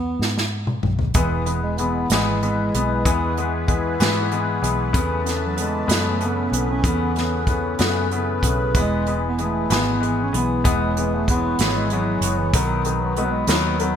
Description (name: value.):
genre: six-eight pop ballad.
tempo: 63 BPM (dotted quarters).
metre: 6/8.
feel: straight.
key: E major.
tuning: A4 = 440 Hz.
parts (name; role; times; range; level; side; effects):
dark bass clarinet; melody; 0.0-14.0 s; D#3 to C#4; -26 LUFS; right 3 dB; ping-pong delay.
vintage muted fingered electric bass; bass; 0.0-14.0 s; E1 to G#2; -25 LUFS; equal; none.
unplugged drum kit; drums; 0.2-13.9 s; hi-hat, kick drum, snare drum, toms; -22 LUFS; right 1 dB; gated reverb.
clear grand piano; accompaniment; 1.1-14.0 s; C#3 to B3; -23 LUFS; left 5 dB; lush chorus.
sweeping resonant pad; sustained chords; 1.1-14.0 s; D#3 to A5; -29 LUFS; right 1 dB; chorus, phaser.
room: moderate plate reverb, RT60 2.0 s, small room ambience.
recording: bright 1980s-style digital production.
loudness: -18 LUFS.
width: side -8 dB against mid.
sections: 0.0-14.0 A section.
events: drum fill 0.2-1.1.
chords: 0.0 F#9sus4 (rootless); 1.1 E; 4.9 Aadd9; 8.7 E; 12.5 B.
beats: 0.19 | 1.15 2.10 | 3.05 3.99 | 4.94 5.88 | 6.83 7.79 | 8.74 9.70 | 10.65 11.59 | 12.54 13.49.